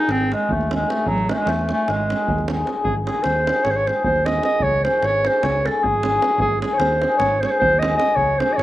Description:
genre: balkan folk, Balkan wedding band.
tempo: 303 BPM (eighths).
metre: 9/8.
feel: straight.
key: unclear.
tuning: A4 = 440 Hz.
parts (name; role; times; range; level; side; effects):
mellow clarinet; melody; 0.0-8.6 s; F#3 to D#5; -20 LUFS; right 1 dB; slapback echo.
cimbalom; accompaniment; 0.0-8.6 s; D#3 to G#4; -23 LUFS; left 4 dB; none.
fingered electric bass; bass; 0.1-8.6 s; G#1 to E2; -26 LUFS; equal; none.
davul; percussion; 0.1-8.6 s; none; -26 LUFS; right 3 dB; slapback echo.
room: little or no reverb.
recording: recorded outdoors, with no room sound.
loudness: -17 LUFS.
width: side -14 dB against mid.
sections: 0.0-2.8 A section; 2.8-8.6 B section.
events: none.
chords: 0.0 G#; 1.1 A; 1.8 G#; 4.6 C#m; 6.4 G#.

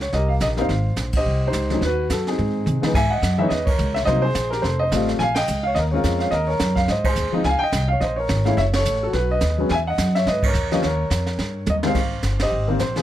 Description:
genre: jazz piano trio.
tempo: 213 BPM.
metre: 4/4.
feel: swing 59% on 8ths.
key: Ab major.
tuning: A4 = 440 Hz.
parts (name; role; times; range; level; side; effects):
warm upright piano; melody; 0.0-13.0 s; Db2 to Ab5; -21 LUFS; equal; none.
upright bass; bass; 0.0-13.0 s; F1 to C3; -23 LUFS; equal; none.
jazz brush drum kit; drums; 0.0-13.0 s; brushed snare drum, crash cymbal, hi-hat, kick drum, ride cymbal, snare drum, toms; -26 LUFS; right 2 dB; none.
room: light reverb.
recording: none.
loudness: -18 LUFS.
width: side -12 dB against mid.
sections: 0.0-2.9 A section; 2.9-12.0 B section; 12.0-13.0 A section.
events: band accent 1.1, 3.6, 5.3, 7.0, 8.7, 10.4, 12.4; drum fill 2.4-2.9, 11.4-12.0.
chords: 0.0 Eb7; 0.7 Abmaj7; 1.8 B7/D#; 2.4 Ab; 2.9 Dbm7; 4.1 Cm7b5; 4.6 F7; 5.2 Bbm7; 6.3 Ebm7; 6.9 Ab; 7.4 Dbmaj7; 8.6 Gbm; 9.1 B; 9.7 E6; 10.8 Eb7; 12.0 Abmaj7.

